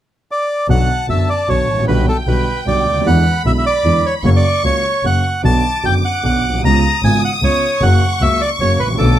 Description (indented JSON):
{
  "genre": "tango",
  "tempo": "152 BPM",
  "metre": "3/4",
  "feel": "rubato",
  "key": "B minor",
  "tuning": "A4 = 441 Hz",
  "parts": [
    { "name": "bandoneon", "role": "melody", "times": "0.3-9.2 s", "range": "A4 to A#5", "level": "-17 LUFS", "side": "equal", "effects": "none" },
    { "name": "warm studio violin section", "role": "second line", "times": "0.7-9.2 s", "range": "G5 to D#6", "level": "-24 LUFS", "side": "left 1 dB", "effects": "none" },
    { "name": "warm concert grand piano", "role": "accompaniment", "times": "0.7-9.2 s", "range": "F#1 to F#4", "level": "-19 LUFS", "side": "right 2 dB", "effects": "none" },
    { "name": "rich double bass", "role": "bass", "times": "0.7-9.2 s", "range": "F#1 to E2", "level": "-16 LUFS", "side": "equal", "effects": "none" }
  ],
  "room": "light reverb",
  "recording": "close, detailed microphones",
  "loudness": "-13 LUFS",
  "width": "side -11 dB against mid",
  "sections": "0.7-9.2 A section",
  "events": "none",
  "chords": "0.0 N.C.; 0.7 Bm; 1.9 Gmaj7/B; 3.1 E7; 4.2 F#; 5.4 Bm; 6.6 C#7; 7.8 F#",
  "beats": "0.28 | 0.68 1.08 1.48 | 1.87 2.27 2.66 | 3.05 3.44 3.84 | 4.24 4.63 5.03 | 5.43 5.83 6.24 | 6.63 7.03 7.42 | 7.82 8.21 8.60 | 8.99"
}